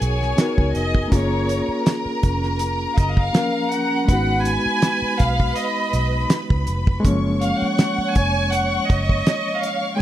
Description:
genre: lush 1970s-style soul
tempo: 81 BPM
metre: 4/4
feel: swing 54% on 16ths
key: unclear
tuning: A4 = 444 Hz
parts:
  - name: rich studio violin section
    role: melody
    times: 0.0-10.0 s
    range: C#5 to G#5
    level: -24 LUFS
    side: equal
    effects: none
  - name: warm studio string section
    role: second line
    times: 0.0-10.0 s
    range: G#4 to C#6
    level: -27 LUFS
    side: equal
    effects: none
  - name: barky reed electric piano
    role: accompaniment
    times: 0.0-10.0 s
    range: E#3 to A#4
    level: -25 LUFS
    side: left 1 dB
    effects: overdrive, fast tremolo
  - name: vintage muted fingered electric bass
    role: bass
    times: 0.0-9.2 s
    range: E#1 to C#2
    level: -23 LUFS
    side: equal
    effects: none
  - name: damped 70s drum kit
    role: drums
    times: 0.0-9.8 s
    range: hi-hat, kick drum, snare drum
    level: -19 LUFS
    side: equal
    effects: none
  - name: vibraphone with soft mallets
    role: texture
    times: 2.2-6.6 s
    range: C#4 to D#4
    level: -32 LUFS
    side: right 6 dB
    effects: stereo widening
room: small room ambience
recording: none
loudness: -18 LUFS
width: side -12 dB against mid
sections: 0.0-10.0 A section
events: violin section solo 0.0-10.0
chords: 0.0 G#m7; 1.1 F#maj7; 4.1 G#m7; 7.0 F#maj7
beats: 0.39 | 1.13 1.87 2.61 3.35 | 4.09 4.83 5.57 6.31 | 7.05 7.79 8.53 9.27 | 10.01

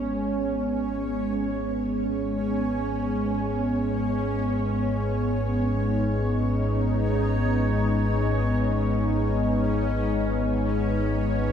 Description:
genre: dark ambient drone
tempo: free time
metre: none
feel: none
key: G# minor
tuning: A4 = 440 Hz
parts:
  - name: sweeping resonant pad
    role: sustained chords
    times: 0.0-11.5 s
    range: G#3 to D#4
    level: -26 LUFS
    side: equal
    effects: chorus
  - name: deep rumbling drone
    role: drone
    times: 0.0-11.5 s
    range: G#1 to G#2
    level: -27 LUFS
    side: left 1 dB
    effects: built-in reverb
  - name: bubbling stepped-filter texture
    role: texture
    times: 0.0-11.5 s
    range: C#4 to C#5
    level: -31 LUFS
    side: right 3 dB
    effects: chorus, built-in reverb
room: wet cathedral reverb, RT60 7.2 s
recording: in a vast, echoing space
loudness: -23 LUFS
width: side -8 dB against mid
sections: 0.0-11.5 A section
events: none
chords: 0.0 G#m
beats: free time

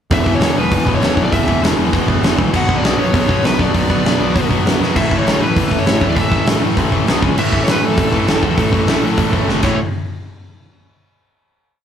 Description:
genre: punk rock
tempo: 198 BPM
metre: 4/4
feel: straight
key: A major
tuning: A4 = 440 Hz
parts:
  - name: smooth overdriven lead guitar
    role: melody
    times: 0.1-9.8 s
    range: A4 to F#5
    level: -21 LUFS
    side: equal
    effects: none
  - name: sludgy distorted guitar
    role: riff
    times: 0.1-9.8 s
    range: E2 to C#4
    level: -20 LUFS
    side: right 7 dB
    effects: overdrive
  - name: tight distorted guitar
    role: riff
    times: 0.1-9.8 s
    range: E2 to C#4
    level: -21 LUFS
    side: left 8 dB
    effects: distortion
  - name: fuzz picked electric bass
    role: bass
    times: 0.1-9.8 s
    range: E1 to F#2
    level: -22 LUFS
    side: equal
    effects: overdrive
  - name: big rock drum kit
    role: drums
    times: 0.1-9.7 s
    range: crash cymbal, hi-hat, kick drum, snare drum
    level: -16 LUFS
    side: equal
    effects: none
room: light reverb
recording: band playing live in one room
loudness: -13 LUFS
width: side -8 dB against mid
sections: 0.1-9.8 chorus; 9.8-11.0 final hit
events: drum fill 4.8, 9.5-9.8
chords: 0.1 E5; 2.5 Bm; 5.0 A; 7.1 B5; 7.2 C#5; 7.4 A5; 9.6 A; 9.8 N.C.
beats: | 0.11 0.41 0.71 1.02 | 1.32 1.62 1.93 2.23 | 2.53 2.83 3.14 3.44 | 3.74 4.05 4.35 4.65 | 4.96 5.26 5.56 5.87 | 6.17 6.47 6.77 7.08 | 7.38 7.68 7.98 8.28 | 8.58 8.88 9.19 9.49

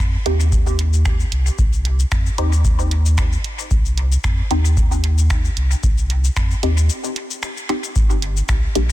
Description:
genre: dub techno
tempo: 113 BPM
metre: 4/4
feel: swing 55% on 16ths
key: unclear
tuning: A4 = 440 Hz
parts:
  - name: warm sub bass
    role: bass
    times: 0.0-8.9 s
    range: G1 to F2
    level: -17 LUFS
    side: equal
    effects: sidechain pumping
  - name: filtered dub chord stab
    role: stabs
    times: 0.3-8.9 s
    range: G3 to G4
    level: -26 LUFS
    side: equal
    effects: phaser, dub echo
  - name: punchy analog drum machine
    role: drums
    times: 0.3-8.9 s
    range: cabasa, finger snaps, hi-hat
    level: -27 LUFS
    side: left 1 dB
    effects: soft clipping on snare, dub echo
  - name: electronic kick drum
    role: drums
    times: 0.5-8.6 s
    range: none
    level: -19 LUFS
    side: equal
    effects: none
room: digital ambience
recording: dense, heavily limited modern master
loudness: -16 LUFS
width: side -15 dB against mid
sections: 0.0-8.0 A section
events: filter sweep on synth stab 0.0-8.0; break 6.9-8.0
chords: 0.0 Cm; 8.0 Gm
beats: 0.52 1.05 | 1.59 2.12 2.65 3.18 | 3.71 4.24 4.77 5.30 | 5.83 6.37 6.90 7.43 | 7.96 8.49

